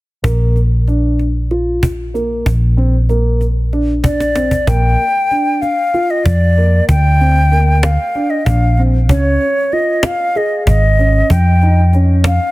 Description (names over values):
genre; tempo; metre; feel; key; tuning
progressive instrumental, band music in an uneven meter; 190 BPM (eighths); 7/8; straight; Bb mixolydian; A4 = 440 Hz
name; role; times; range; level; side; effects
dark grand piano; arpeggios; 0.2-12.3 s; Bb3 to Ab4; -20 LUFS; right 1 dB; none
hollow-body short-scale fingered electric bass; bass; 0.2-12.4 s; Ab1 to F2; -12 LUFS; equal; none
cajon; drums; 0.2-12.4 s; none; -17 LUFS; equal; none
mellow silver concert flute; melody; 4.0-12.5 s; Db5 to G5; -16 LUFS; equal; tape echo
room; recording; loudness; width
studio reverb; dense, heavily limited modern master; -11 LUFS; side -19 dB against mid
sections
0.2-4.7 A section; 4.7-12.5 B section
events
drum fill 4.0-4.7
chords
0.2 Bb; 9.1 Dbadd9